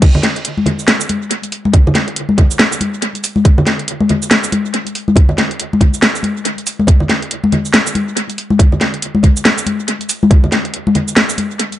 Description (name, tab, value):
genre	dubstep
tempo	140 BPM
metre	4/4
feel	swing 60% on 16ths, half-time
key	none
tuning	none
part	electronic kick drum	drums	0.0-10.4 s	none	-9 LUFS	equal	none
part	garage drum kit	drums	0.0-11.8 s	crash cymbal, hi-hat, shaker, snare drum	-14 LUFS	equal	tape echo
part	congas	percussion	0.0-11.5 s	none	-16 LUFS	left 2 dB	dub echo
room	light reverb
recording	echo-heavy mix, nothing above 10.5 kHz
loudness	-11 LUFS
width	side -13 dB against mid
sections	0.0-11.8 A section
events	none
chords	none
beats	| 0.02 0.45 0.88 1.31 | 1.74 2.17 2.59 3.02 | 3.45 3.88 4.31 4.74 | 5.17 5.59 6.02 6.45 | 6.88 7.31 7.74 8.16 | 8.59 9.02 9.45 9.88 | 10.31 10.74 11.16 11.59